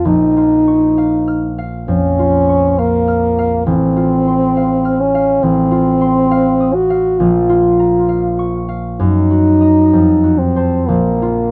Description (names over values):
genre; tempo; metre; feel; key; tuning
classical, romantic duo for French horn and harp; 67 BPM; 4/4; uneven beats, rubato; Bb minor; A4 = 440 Hz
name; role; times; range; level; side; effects
warm French horn; melody; 0.0-11.5 s; Bb3 to Gb4; -15 LUFS; equal; none
concert harp; accompaniment; 0.0-11.5 s; A1 to F6; -18 LUFS; equal; none
room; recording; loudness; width
light reverb; close, detailed microphones; -13 LUFS; mono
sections
0.0-11.5 A section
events
none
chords
0.1 Bbm; 3.7 F/A; 5.4 F7/A; 7.2 Bbm; 9.0 Ebm/Gb; 9.9 F7b9; 10.9 Bb5